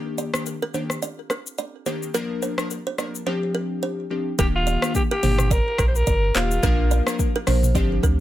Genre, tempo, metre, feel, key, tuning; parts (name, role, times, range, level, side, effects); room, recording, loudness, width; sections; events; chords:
afrobeats; 107 BPM; 4/4; swing 58% on 16ths; Eb major; A4 = 444 Hz
glassy digital keys; accompaniment; 0.0-8.2 s; Eb3 to Bb4; -26 LUFS; left 2 dB; chorus
buzzing kalimba; riff; 0.2-8.1 s; Bb4 to D5; -29 LUFS; right 4 dB; ping-pong delay
afro-pop drum kit; drums; 0.2-8.2 s; handclaps, hi-hat, kick drum, rim click, shaker, toms; -24 LUFS; equal
growling alto saxophone; melody; 4.4-7.2 s; F4 to C5; -26 LUFS; equal; plate reverb, ping-pong delay
warm sub bass; bass; 4.4-8.2 s; Eb1 to D2; -21 LUFS; equal
little or no reverb; -20 LUFS; side -14 dB against mid
0.0-4.4 A section; 4.4-8.2 B section
0.0 Ebmaj7; 2.1 Bb; 3.3 G7sus4; 4.4 Ebmaj7; 6.6 Bb